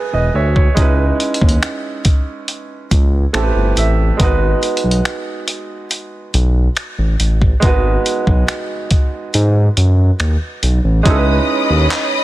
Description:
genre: contemporary R&B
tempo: 70 BPM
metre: 4/4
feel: straight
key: C# minor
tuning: A4 = 439 Hz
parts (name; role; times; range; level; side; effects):
- warm baby grand piano; accompaniment; 0.0-12.2 s; G#3 to A5; -20 LUFS; right 3 dB; none
- smooth synth bass; bass; 0.1-11.9 s; E1 to G#2; -14 LUFS; equal; none
- dusty soul sampler-style drum kit; drums; 0.6-12.1 s; finger snaps, handclaps, hi-hat, kick drum; -16 LUFS; equal; soft clipping on snare
- warm studio string section; sustained chords; 11.1-12.2 s; C#5 to D#6; -17 LUFS; left 1 dB; none
room: little or no reverb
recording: dense, heavily limited modern master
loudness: -13 LUFS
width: side -16 dB against mid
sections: 0.0-11.1 A section; 11.1-12.2 B section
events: grand piano fill 2.9-4.2; kick muted 9.3-11.1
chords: 0.0 E69; 0.8 C#m7; 3.3 Am7; 4.2 G#m7; 11.1 C#m9

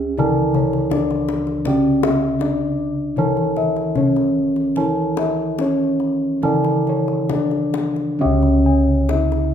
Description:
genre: Javanese gamelan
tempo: 66-81 BPM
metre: 4/4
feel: straight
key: unclear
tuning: A4 = 437 Hz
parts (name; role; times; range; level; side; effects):
- gamelan-type bronze metallophone; melody; 0.0-9.5 s; C#4 to G#4-30c; -20 LUFS; right 1 dB; none
- gamelan-type bronze metallophone; accompaniment; 0.0-9.5 s; C#3 to C#4; -23 LUFS; right 2 dB; none
- gamelan-type bossed gongs; bass; 0.0-9.5 s; C#2 to C#5; -24 LUFS; left 1 dB; none
- gamelan-type bossed gongs; arpeggios; 0.2-9.5 s; C#5 to G#5-30c; -26 LUFS; left 8 dB; none
- kendang; percussion; 0.2-9.4 s; none; -27 LUFS; left 5 dB; none
- gamelan-type bronze metallophone; arpeggios; 8.2-9.5 s; C#5 to E5-30c; -28 LUFS; right 2 dB; none
room: moderate recital hall reverb, RT60 1.3 s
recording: minimal, uncompressed stereo recording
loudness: -16 LUFS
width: side -9 dB against mid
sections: 0.0-8.2 A section; 8.2-9.5 B section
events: none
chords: none

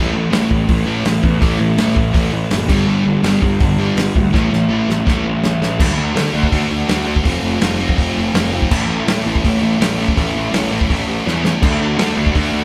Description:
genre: punk rock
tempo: 164 BPM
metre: 4/4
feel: straight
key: unclear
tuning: A4 = 445 Hz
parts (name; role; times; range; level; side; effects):
- sludgy distorted guitar; riff; 0.0-12.6 s; G2 to F#4; -21 LUFS; equal; overdrive
- thick fuzz guitar; riff; 0.0-5.8, 11.6-12.6 s; G2 to D4; -21 LUFS; equal; distortion
- fuzz picked electric bass; bass; 0.0-12.6 s; F1 to D3; -23 LUFS; equal; overdrive
- loose indie drum kit; drums; 0.3-12.4 s; crash cymbal, hi-hat, kick drum, snare drum; -21 LUFS; equal; none
room: moderate stone room reverb, RT60 1.4 s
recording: band playing live in one room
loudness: -16 LUFS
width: mono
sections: 0.0-5.8 A section; 5.8-12.6 B section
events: drum fill 4.3-5.8, 11.3-11.6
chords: 0.0 A5; 2.7 G5; 4.3 A5; 5.8 D; 7.3 F; 8.7 A; 11.6 D

